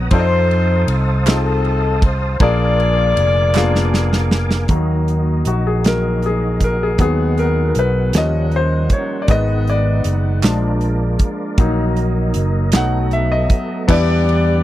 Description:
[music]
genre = slow gospel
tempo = 52 BPM (dotted quarters)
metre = 6/8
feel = straight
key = Eb harmonic minor from 4.7 s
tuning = A4 = 442 Hz
[part]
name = mellow horn section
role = melody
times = 0.0-4.3, 13.9-14.6 s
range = C4 to D5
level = -19 LUFS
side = left 3 dB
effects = none
[part]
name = clear concert grand piano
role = accompaniment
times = 0.0-14.6 s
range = Bb2 to A#5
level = -20 LUFS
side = left 3 dB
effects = none
[part]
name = tonewheel organ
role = sustained chords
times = 0.0-14.6 s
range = E3 to Eb6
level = -27 LUFS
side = right 2 dB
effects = fast rotary speaker, chorus vibrato
[part]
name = fingered electric bass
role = bass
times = 0.0-14.6 s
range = F1 to F2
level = -17 LUFS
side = right 1 dB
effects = none
[part]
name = modern studio drum kit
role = drums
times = 0.1-14.5 s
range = crash cymbal, hi-hat, kick drum, ride cymbal, snare drum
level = -16 LUFS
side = right 1 dB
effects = none
[part]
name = group handclap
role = percussion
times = 1.3-3.9, 10.4-13.1 s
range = none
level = -26 LUFS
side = right 10 dB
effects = none
[part]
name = mellow French horn section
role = sustained chords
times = 4.7-13.9 s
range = Eb3 to Eb4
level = -30 LUFS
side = right 2 dB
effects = none
[sound]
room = little or no reverb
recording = dry, close 1970s-style studio recording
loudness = -14 LUFS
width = side -14 dB against mid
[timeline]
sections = 0.0-4.7 A section; 4.7-13.9 B section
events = drum fill 3.5-4.7; grand piano solo 4.7-13.9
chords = 0.1 F7; 2.4 Bb7; 4.7 Ebm; 7.0 B/D#; 8.1 Eb7; 9.3 Abm; 10.4 Bb7; 11.6 Ebm/Bb; 12.7 B7; 13.9 Em7

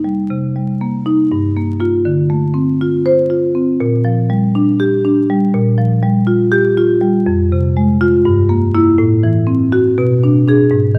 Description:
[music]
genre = classical, contemporary piece for solo marimba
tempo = 242 BPM (eighths)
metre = 7/8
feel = rubato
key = unclear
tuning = A4 = 441 Hz
[part]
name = marimba with medium hard mallets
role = solo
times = 0.0-11.0 s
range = F2 to C5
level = -14 LUFS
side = equal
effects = none
[sound]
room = wet recital hall reverb, RT60 1.6 s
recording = dark, warm production, vinyl crackle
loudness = -14 LUFS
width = mono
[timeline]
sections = 0.3-11.0 A section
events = none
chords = 0.3 Cm7; 1.3 Gm7; 2.0 Dm7; 3.8 Bb6; 5.5 Gm7/Bb; 7.3 Fm; 8.2 Gm6; 9.0 Am6; 10.0 Bm6

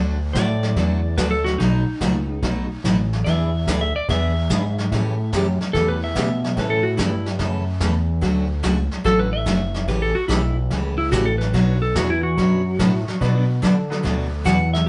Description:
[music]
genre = country, western swing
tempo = 145 BPM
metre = 4/4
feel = swing 67% on 8ths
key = unclear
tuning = A4 = 440 Hz
[part]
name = picked steel-string acoustic guitar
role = accompaniment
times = 0.0-14.6 s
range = B2 to C#5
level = -26 LUFS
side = equal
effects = none
[part]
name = fat analog bass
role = bass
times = 0.0-14.9 s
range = F#1 to D3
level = -24 LUFS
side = equal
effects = none
[part]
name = clean lap steel guitar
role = second line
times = 0.3-14.9 s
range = D#4 to F#5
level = -27 LUFS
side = equal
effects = none
[part]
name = vintage brush drum kit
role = drums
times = 0.3-14.9 s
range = brushed snare drum, hi-hat, kick drum, snare drum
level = -29 LUFS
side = equal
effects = none
[part]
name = bright upright piano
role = accompaniment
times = 13.2-14.4 s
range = F#3 to B4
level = -33 LUFS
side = equal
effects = none
[sound]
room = moderate studio reverb, RT60 0.7 s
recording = band playing live in one room, nothing above 11.0 kHz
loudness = -21 LUFS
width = mono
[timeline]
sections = 0.0-14.9 A section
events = electric slide guitar solo 0.0-14.9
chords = 0.0 D; 1.6 B7; 3.3 E7; 4.9 A7; 6.6 A; 8.2 Dmaj7; 9.9 A7; 11.5 Bmadd9; 13.2 Bm

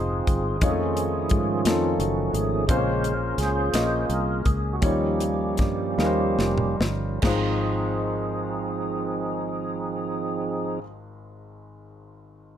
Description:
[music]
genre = slow gospel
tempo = 46-58 BPM (dotted quarters)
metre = 6/8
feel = straight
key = Ab major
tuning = A4 = 440 Hz
[part]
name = warm concert grand piano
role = accompaniment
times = 0.0-12.6 s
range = Ab1 to Eb5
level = -29 LUFS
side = left 3 dB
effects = none
[part]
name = tonewheel organ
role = sustained chords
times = 0.0-10.8 s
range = Db3 to C5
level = -26 LUFS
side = right 3 dB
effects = slow rotary speaker, overdrive, chorus vibrato
[part]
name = fingered electric bass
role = bass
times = 0.0-10.8 s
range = F1 to G#2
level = -28 LUFS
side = equal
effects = none
[part]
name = tight funk drum kit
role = drums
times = 0.3-7.4 s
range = china cymbal, hi-hat, kick drum, snare drum, toms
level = -25 LUFS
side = equal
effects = none
[sound]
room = light reverb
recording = none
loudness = -22 LUFS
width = side -10 dB against mid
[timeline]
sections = 0.0-7.2 A section; 7.2-12.5 B section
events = tonewheel organ solo 0.0-7.2; slowing down 2.7-7.2; drum fill 6.0-7.2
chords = 0.0 Ab6; 0.6 F7alt; 2.7 Bbm9; 4.8 Eb9; 7.2 Ab6

